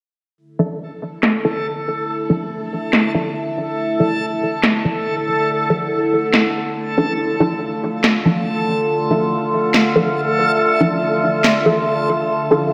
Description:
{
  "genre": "deep dubstep",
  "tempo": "141 BPM",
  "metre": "4/4",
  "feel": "half-time",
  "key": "D minor",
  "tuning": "A4 = 440 Hz",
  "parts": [
    { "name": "overtone-sweeping drone", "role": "sustained chords", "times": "1.3-12.7 s", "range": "D3 to F4", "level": "-23 LUFS", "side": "equal", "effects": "chorus, built-in reverb" },
    { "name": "backwards swelling texture", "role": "texture", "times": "1.4-12.7 s", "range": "A4", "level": "-25 LUFS", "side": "equal", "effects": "built-in reverb" },
    { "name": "filtered dub chord stab", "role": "stabs", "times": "0.6-12.7 s", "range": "F3 to A4", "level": "-23 LUFS", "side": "equal", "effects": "phaser, analog chorus, cassette tape, dub echo" },
    { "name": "electronic snare drum", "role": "drums", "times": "1.2-11.5 s", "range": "none", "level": "-20 LUFS", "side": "equal", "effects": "low-pass filter on snare, low-pass filter on room" }
  ],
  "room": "wet lush hall reverb, RT60 1.6 s, digital ambience",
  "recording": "dreamy mix soaked in reverb",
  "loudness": "-18 LUFS",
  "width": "mono",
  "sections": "0.4-12.7 A section",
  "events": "filter sweep on synth stab 0.4-12.7",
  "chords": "0.4 Dmadd9"
}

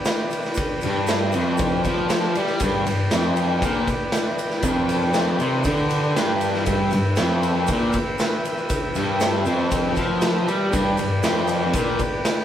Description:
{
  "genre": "garage rock duo or trio",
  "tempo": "118 BPM",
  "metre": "4/4",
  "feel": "straight",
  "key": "G major",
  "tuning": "A4 = 440 Hz",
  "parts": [
    { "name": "overdriven combo organ", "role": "sustained chords", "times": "0.0-12.4 s", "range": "G4 to E5", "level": "-27 LUFS", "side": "right 1 dB", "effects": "none" },
    { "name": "tube shaker", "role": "percussion", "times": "0.0-12.4 s", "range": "none", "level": "-42 LUFS", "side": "right 7 dB", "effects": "none" },
    { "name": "raw garage drum kit", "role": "drums", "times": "0.1-12.4 s", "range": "kick drum, ride cymbal, snare drum", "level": "-24 LUFS", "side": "equal", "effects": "none" },
    { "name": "fuzz guitar", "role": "riff", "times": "0.8-12.0 s", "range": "F2 to G3", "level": "-21 LUFS", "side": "left 1 dB", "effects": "distortion" }
  ],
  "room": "wet stone room reverb, RT60 0.9 s",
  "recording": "band playing live in one room",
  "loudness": "-19 LUFS",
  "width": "side -10 dB against mid",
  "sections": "0.0-12.4 A section",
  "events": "none",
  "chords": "0.0 G"
}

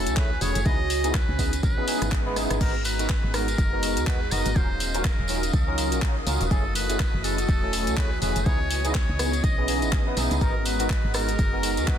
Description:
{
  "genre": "deep house",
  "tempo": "123 BPM",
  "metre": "4/4",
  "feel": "swing 58% on 16ths",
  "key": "G# minor",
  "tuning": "A4 = 441 Hz",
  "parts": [
    { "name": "trumpet with metal mute", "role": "melody", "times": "0.0-12.0 s", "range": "A4 to D#5", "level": "-32 LUFS", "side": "left 1 dB", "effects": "tape echo" },
    { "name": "overdriven tine electric piano", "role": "stabs", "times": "0.0-12.0 s", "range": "A3 to B4", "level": "-30 LUFS", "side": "equal", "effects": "ensemble chorus, sidechain pumping" },
    { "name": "woody FM bass", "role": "bass", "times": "0.0-12.0 s", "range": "D#1 to D#2", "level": "-28 LUFS", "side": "equal", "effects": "sidechain pumping" },
    { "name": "warbly tape-like pad", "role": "texture", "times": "0.0-12.0 s", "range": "C#4 to A#5", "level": "-34 LUFS", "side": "right 2 dB", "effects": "chorus, built-in reverb, phaser, sidechain pumping" },
    { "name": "deep house drum kit", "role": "drums", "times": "0.1-12.0 s", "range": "crash cymbal, handclaps, hi-hat, rim click", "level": "-31 LUFS", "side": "left 2 dB", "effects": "overdrive" },
    { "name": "tambourine", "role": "percussion", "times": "0.1-12.0 s", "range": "none", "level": "-36 LUFS", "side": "right 3 dB", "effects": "none" },
    { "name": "electronic kick drum", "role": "drums", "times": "0.2-12.0 s", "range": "none", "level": "-24 LUFS", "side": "equal", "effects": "overdrive" },
    { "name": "swell", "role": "sound effects", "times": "1.8-2.6 s", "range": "none", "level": "-37 LUFS", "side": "right 1 dB", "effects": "none" },
    { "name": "warm analog pad", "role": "sustained chords", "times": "2.6-12.0 s", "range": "E3 to A#5", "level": "-34 LUFS", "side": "equal", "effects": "chorus, sidechain pumping" },
    { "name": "string machine, violins", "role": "texture", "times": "2.6-12.0 s", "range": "D#5 to D#6", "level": "-39 LUFS", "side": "equal", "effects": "ensemble chorus" }
  ],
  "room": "digital ambience",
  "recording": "dense, heavily limited modern master",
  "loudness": "-22 LUFS",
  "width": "side -9 dB against mid",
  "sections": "0.0-12.0 A section",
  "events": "swell 1.8-2.6; drum fill 2.4",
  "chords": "0.0 F#m9; 0.7 C#m9; 2.6 G#m9; 4.6 D#m9; 6.5 F#m9; 8.5 C#m9; 10.4 G#m9"
}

